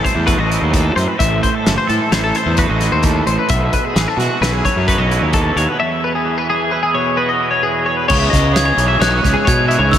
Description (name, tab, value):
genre	math rock and midwest emo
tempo	130 BPM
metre	5/4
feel	straight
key	E major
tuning	A4 = 439 Hz
part	twangy electric guitar	accompaniment	0.0-10.0 s	E2 to A4	-21 LUFS	right 6 dB	analog chorus
part	twelve-string electric guitar	arpeggios	0.0-10.0 s	F#4 to E5	-17 LUFS	left 3 dB	wide subtle chorus
part	loose indie drum kit	drums	0.0-10.0 s	crash cymbal, hi-hat, kick drum, snare drum	-20 LUFS	equal	none
part	fuzz fingered electric bass	bass	0.1-10.0 s	F#1 to B2	-17 LUFS	equal	overdrive
part	glockenspiel with soft plastic mallets	melody	8.1-10.0 s	C#6 to G#6	-18 LUFS	equal	none
room	wet huge ambient reverb, RT60 8.3 s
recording	dreamy mix soaked in reverb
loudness	-13 LUFS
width	side -10 dB against mid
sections	0.0-8.1 A section; 8.1-10.0 B section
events	none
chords	0.0 Am; 3.5 B7sus4; 5.8 E6; 8.1 C#m7